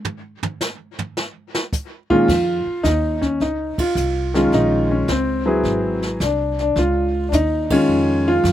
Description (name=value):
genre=jazz piano trio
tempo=107 BPM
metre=4/4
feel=swing 68% on 8ths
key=unclear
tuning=A4 = 440 Hz
part: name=jazz brush drum kit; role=drums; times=0.0-8.5 s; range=brushed snare drum, crash cymbal, hi-hat, kick drum, ride cymbal, snare drum, toms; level=-27 LUFS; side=right 1 dB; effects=none
part: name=warm concert grand piano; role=melody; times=2.1-8.5 s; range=Bb2 to Cb5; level=-17 LUFS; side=left 1 dB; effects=slapback echo
part: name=upright bass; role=bass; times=2.3-8.5 s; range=Ab1 to Gb2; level=-23 LUFS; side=right 1 dB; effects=none
room=little or no reverb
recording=recorded outdoors, with no room sound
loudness=-17 LUFS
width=side -12 dB against mid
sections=0.0-2.3 A section; 2.3-8.5 B section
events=grand piano solo 0.0-2.3; drum solo 0.0-2.3; band accent 3.7, 7.6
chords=0.0 N.C.; 2.3 Dbmaj9; 4.5 Eb7(no3); 5.6 Ab7alt; 6.8 Db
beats=| 0.05 0.61 1.17 1.73 | 2.28 2.84 3.40 3.96 | 4.52 5.08 5.64 6.20 | 6.76 7.32 7.88 8.44